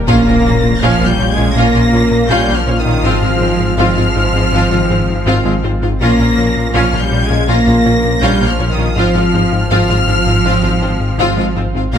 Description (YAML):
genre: cinematic, hybrid orchestral and electronic film score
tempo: 81 BPM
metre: 4/4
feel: straight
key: Bb dorian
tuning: A4 = 441 Hz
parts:
  - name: rich symphonic viola section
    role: accompaniment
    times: 0.0-12.0 s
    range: Bb3 to F4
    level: -21 LUFS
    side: right 1 dB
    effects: none
  - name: brassy analog pad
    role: sustained chords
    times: 0.0-12.0 s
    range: F3 to F5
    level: -22 LUFS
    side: right 1 dB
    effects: chorus
  - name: phased detuned saw bass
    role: bass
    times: 0.0-12.0 s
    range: Ab1 to Bb1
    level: -19 LUFS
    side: equal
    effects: phaser
  - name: clear symphonic violin section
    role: melody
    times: 0.1-12.0 s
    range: Eb6 to Bb6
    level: -20 LUFS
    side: left 2 dB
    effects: none
  - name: rich studio violin section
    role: second line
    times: 0.1-12.0 s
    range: C4 to F5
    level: -22 LUFS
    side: left 3 dB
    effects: none
  - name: mellow French horn section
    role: sustained chords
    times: 0.1-12.0 s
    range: Eb3 to Bb3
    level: -19 LUFS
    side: left 3 dB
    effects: none
  - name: rubbery square bass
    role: riff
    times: 0.1-12.0 s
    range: Ab2 to Bb3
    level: -18 LUFS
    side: left 2 dB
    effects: none
  - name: clear symphonic cello section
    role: bass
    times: 0.1-12.0 s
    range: Eb3 to Bb3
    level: -18 LUFS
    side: right 3 dB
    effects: none
  - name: clear symphonic double bass section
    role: bass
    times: 0.1-12.0 s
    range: Ab1 to Bb1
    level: -22 LUFS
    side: right 4 dB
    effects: none
  - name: impact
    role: sound effects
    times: 0.1-3.0 s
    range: none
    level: -22 LUFS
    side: equal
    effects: none
room: light reverb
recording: none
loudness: -10 LUFS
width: side -8 dB against mid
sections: 0.1-12.0 A section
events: impact 0.1-3.0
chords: 0.1 Bbm; 3.0 Fm/Ab; 6.0 Bbm; 9.0 Fm/Ab